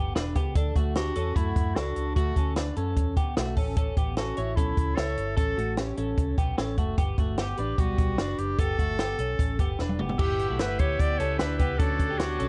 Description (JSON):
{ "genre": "jangly indie pop", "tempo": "149 BPM", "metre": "4/4", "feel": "straight", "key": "unclear", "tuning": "A4 = 441 Hz", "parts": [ { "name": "twelve-string electric guitar", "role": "arpeggios", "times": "0.0-12.5 s", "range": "G3 to C#5", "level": "-35 LUFS", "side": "equal", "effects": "none" }, { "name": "vintage muted fingered electric bass", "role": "bass", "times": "0.0-12.5 s", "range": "E1 to F#2", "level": "-34 LUFS", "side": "equal", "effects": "none" }, { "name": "compact cocktail drum kit", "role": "drums", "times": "0.2-12.5 s", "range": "crash cymbal, hi-hat, kick drum, snare drum, toms", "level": "-29 LUFS", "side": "equal", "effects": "none" }, { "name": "bright clarinet", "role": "melody", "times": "1.0-12.5 s", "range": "E4 to D5", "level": "-34 LUFS", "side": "equal", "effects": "none" }, { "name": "combo organ", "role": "accompaniment", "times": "10.2-12.5 s", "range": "D4 to C#5", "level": "-37 LUFS", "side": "equal", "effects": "none" } ], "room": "light reverb, studio reverb", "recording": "cassette tape, nothing above 10.8 kHz", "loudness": "-27 LUFS", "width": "mono", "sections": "0.0-10.2 A section; 10.2-12.5 B section", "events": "drum fill 9.8-10.2", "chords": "0.0 G6; 0.6 D; 3.6 A; 7.0 Gadd9; 10.2 G6; 11.8 Dmaj7", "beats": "0.15 | 0.56 0.96 1.36 1.76 | 2.16 2.56 2.96 3.37 | 3.77 4.17 4.57 4.97 | 5.37 5.78 6.18 6.58 | 6.98 7.38 7.78 8.19 | 8.59 8.99 9.39 9.79 | 10.19 10.60 11.00 11.40 | 11.80 12.20" }